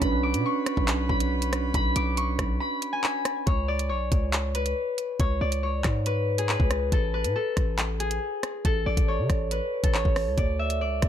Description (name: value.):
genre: hip hop, drill.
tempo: 139 BPM.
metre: 4/4.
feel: half-time.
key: unclear.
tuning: A4 = 439 Hz.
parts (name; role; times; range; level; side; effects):
Celtic harp; melody; 0.0-11.1 s; G#4 to D6; -28 LUFS; left 2 dB; low-pass filter, ping-pong delay.
soft electric-piano-like synth keys; accompaniment; 0.0-3.5 s; C#4 to B4; -30 LUFS; right 7 dB; chorus, tremolo, low-pass filter.
warm brass ensemble; sustained chords; 0.0-3.4 s; F#4 to B5; -37 LUFS; left 2 dB; none.
hard-hitting 808-style bass; bass; 0.0-11.1 s; A1 to C#3; -28 LUFS; equal; none.
drill drum kit; drums; 0.0-11.1 s; handclaps, hi-hat, kick drum, rim click; -26 LUFS; equal; none.
room: digital ambience.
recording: none.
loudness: -24 LUFS.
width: side -10 dB against mid.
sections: 0.0-3.5 A section; 3.5-11.1 B section.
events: break 2.6-3.5.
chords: 0.0 Bmadd9; 3.5 C#5; 6.9 A; 10.4 D5.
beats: | 0.02 0.45 0.88 1.31 | 1.74 2.17 2.61 3.04 | 3.47 3.90 4.33 4.76 | 5.20 5.63 6.06 6.49 | 6.92 7.35 7.79 8.22 | 8.65 9.08 9.51 9.94 | 10.38 10.81.